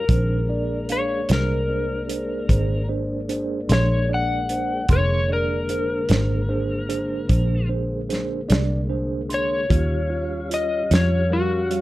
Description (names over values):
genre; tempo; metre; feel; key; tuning
slow blues; 50 BPM (dotted quarters); 12/8; straight; unclear; A4 = 440 Hz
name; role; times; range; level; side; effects
electric slide guitar; melody; 0.0-11.8 s; Gb4 to Gb5; -25 LUFS; left 2 dB; none
tonewheel organ; sustained chords; 0.0-11.8 s; D3 to F5; -31 LUFS; left 2 dB; slow rotary speaker, overdrive
vintage muted fingered electric bass; bass; 0.0-11.8 s; F1 to F2; -23 LUFS; equal; none
mellow tine electric piano; accompaniment; 0.1-11.8 s; G3 to C6; -29 LUFS; right 4 dB; medium stereo tremolo
warm soul drum kit; drums; 0.1-11.8 s; hi-hat, kick drum, snare drum; -22 LUFS; equal; none
room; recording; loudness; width
light reverb; dark, warm production; -20 LUFS; side -17 dB against mid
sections
0.0-11.8 A section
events
none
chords
0.1 Bb9; 9.7 Eb9